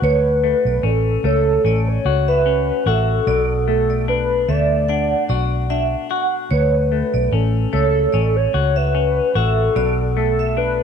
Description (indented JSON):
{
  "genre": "indie pop, bedroom pop",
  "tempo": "74 BPM",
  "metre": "4/4",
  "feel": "swing 55% on 16ths",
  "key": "D major",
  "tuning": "A4 = 440 Hz",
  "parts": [
    { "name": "warbly nostalgic lead", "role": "melody", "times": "0.0-10.8 s", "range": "A4 to D5", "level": "-19 LUFS", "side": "equal", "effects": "analog chorus, slapback echo" },
    { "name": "vibraphone with medium hard mallets", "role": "second line", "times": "0.0-10.6 s", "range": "C#5 to F#5", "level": "-26 LUFS", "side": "right 13 dB", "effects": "ensemble chorus, slapback echo" },
    { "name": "semi-hollow electric guitar", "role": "accompaniment", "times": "0.0-10.8 s", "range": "B2 to F#4", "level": "-24 LUFS", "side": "left 15 dB", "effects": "wide subtle chorus, warbly pitch drift" },
    { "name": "vintage muted fingered electric bass", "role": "bass", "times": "0.0-10.8 s", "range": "A1 to D2", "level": "-19 LUFS", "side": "equal", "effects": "none" }
  ],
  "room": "light reverb, digital ambience",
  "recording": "1960s-style stereo with parts hard left and right",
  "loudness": "-15 LUFS",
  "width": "side -7 dB against mid",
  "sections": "0.0-10.8 A section",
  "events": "none",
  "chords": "0.0 Dmaj7; 3.3 Bm7; 6.5 Dmaj7; 9.8 Bm7",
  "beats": "| 0.03 0.84 1.65 2.46 | 3.27 4.08 4.89 5.70 | 6.51 7.33 8.14 8.95 | 9.76 10.57"
}